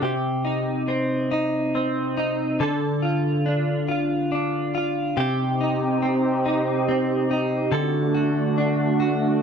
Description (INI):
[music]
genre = six-eight pop ballad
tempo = 47 BPM (dotted quarters)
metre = 6/8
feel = straight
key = unclear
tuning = A4 = 439 Hz
[part]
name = direct-recorded clean electric guitar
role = accompaniment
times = 0.0-9.4 s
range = C3 to A4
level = -22 LUFS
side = equal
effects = double-tracked left and right
[part]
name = lush unison pad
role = sustained chords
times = 5.2-9.4 s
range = A3 to G4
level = -23 LUFS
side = right 3 dB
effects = chorus, phaser
[sound]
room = light reverb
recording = dry, close 1970s-style studio recording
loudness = -21 LUFS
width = side -6 dB against mid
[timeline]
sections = 0.0-9.4 A section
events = none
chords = 0.0 Cm; 2.6 Dm; 5.2 Cm; 7.7 D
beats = | 0.03 1.31 | 2.60 3.88 | 5.16 6.44 | 7.72 9.00